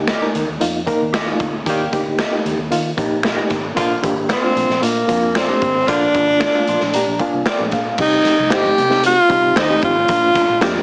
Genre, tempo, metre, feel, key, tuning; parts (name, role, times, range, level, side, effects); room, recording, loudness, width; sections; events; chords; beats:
uptempo 1960s-style soul; 114 BPM; 4/4; straight; Eb major; A4 = 439 Hz
overdriven reed electric piano; accompaniment; 0.0-10.8 s; Bb3 to C6; -23 LUFS; equal; fast tremolo
vintage muted fingered electric bass; bass; 0.0-10.8 s; G1 to Eb3; -32 LUFS; equal
mellow electric guitar; stabs; 0.1-10.8 s; F4 to Eb5; -27 LUFS; equal; analog chorus
raw garage drum kit; drums; 0.1-10.7 s; crash cymbal, hi-hat, kick drum, snare drum; -24 LUFS; equal
finger snap; percussion; 0.1-10.7 s; -25 LUFS; equal
warm horn section; second line; 1.7-6.3 s; D3 to G4; -24 LUFS; equal
breathy tenor saxophone; melody; 4.3-10.8 s; Bb3 to G4; -18 LUFS; equal
congas; percussion; 8.0-10.8 s; -37 LUFS; equal
light reverb; heavily compressed radio sound, small speaker sound; -17 LUFS; mono
0.0-8.0 A section; 8.0-10.8 B section
reed electric piano fill 6.4-8.0
0.0 Eb; 3.8 Bb; 8.0 Cm; 10.1 Bb
0.08 0.61 1.14 | 1.66 2.19 2.72 3.25 | 3.77 4.30 4.83 5.36 | 5.88 6.41 6.94 7.46 | 7.99 8.52 9.04 9.57 | 10.09 10.62